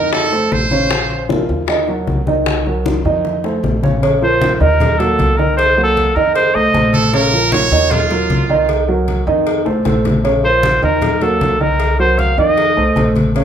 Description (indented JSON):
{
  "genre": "latin, Cuban son and guajira",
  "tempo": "154 BPM",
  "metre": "4/4",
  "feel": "straight",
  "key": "Bb harmonic minor",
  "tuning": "A4 = 438 Hz",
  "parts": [
    { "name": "brilliant trumpet", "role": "second line", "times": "0.0-1.3, 6.9-8.7 s", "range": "F4 to Db5", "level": "-17 LUFS", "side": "right 3 dB", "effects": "none" },
    { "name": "dark concert grand piano", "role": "arpeggios", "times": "0.0-13.4 s", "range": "Db3 to Eb5", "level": "-16 LUFS", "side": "right 2 dB", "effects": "none" },
    { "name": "upright bass", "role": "bass", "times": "0.0-13.4 s", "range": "Bb1 to F2", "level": "-20 LUFS", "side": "equal", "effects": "none" },
    { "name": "bongos and cowbell", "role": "percussion", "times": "0.1-13.4 s", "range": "none", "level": "-24 LUFS", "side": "left 6 dB", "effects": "none" },
    { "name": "congas", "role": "percussion", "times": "0.1-13.4 s", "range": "none", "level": "-21 LUFS", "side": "left 2 dB", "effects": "none" },
    { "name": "warm trumpet", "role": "melody", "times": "4.2-6.9, 10.4-13.1 s", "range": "A4 to F5", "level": "-15 LUFS", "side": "equal", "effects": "none" }
  ],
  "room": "wet large studio reverb, RT60 0.9 s",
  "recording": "band playing live in one room",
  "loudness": "-12 LUFS",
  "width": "side -8 dB against mid",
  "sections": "0.0-4.0 A section; 4.0-13.4 B section",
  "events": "drum fill 3.2-4.0, 9.7-10.2",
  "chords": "0.1 F7; 0.9 Bbmadd9; 1.7 Ebm; 2.5 Cm7b5; 3.2 F7; 4.0 Bbmadd9; 4.8 Ebm; 5.6 Cm7b5; 6.4 F7; 7.1 Bbm; 7.9 Cm7b5; 9.5 F7; 10.2 Bbmadd9; 11.0 Ebm; 11.8 Cm7b5; 12.6 F7",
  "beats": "0.13 0.52 | 0.91 1.30 1.69 2.08 | 2.47 2.86 3.25 3.64 | 4.03 4.42 4.81 5.20 | 5.58 5.97 6.36 6.75 | 7.14 7.53 7.92 8.31 | 8.70 9.08 9.47 9.86 | 10.25 10.64 11.03 11.41 | 11.80 12.19 12.58 12.97 | 13.36"
}